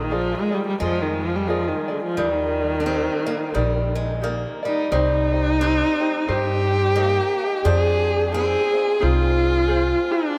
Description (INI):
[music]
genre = Hawaiian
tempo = 88 BPM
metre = 4/4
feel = swing 59% on 8ths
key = Eb major, C minor from 4.9 s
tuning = A4 = 441 Hz
[part]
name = dark viola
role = melody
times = 0.0-10.4 s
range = D3 to Ab4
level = -24 LUFS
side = equal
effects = none
[part]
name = picked swing-style acoustic guitar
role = second line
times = 0.0-10.3 s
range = G3 to D4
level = -30 LUFS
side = equal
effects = none
[part]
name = ukulele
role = accompaniment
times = 0.0-10.4 s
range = Eb4 to D5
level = -31 LUFS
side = equal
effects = none
[part]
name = upright bass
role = bass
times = 0.0-9.9 s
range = Bb1 to G2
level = -26 LUFS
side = equal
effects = none
[sound]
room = moderate cathedral reverb, RT60 6.4 s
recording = in a vast, echoing space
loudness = -21 LUFS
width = mono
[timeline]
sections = 0.0-4.9 A section; 4.9-10.4 B section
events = none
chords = 0.0 Bb7; 2.2 Ebmaj7; 4.9 Cm7; 7.7 Fm7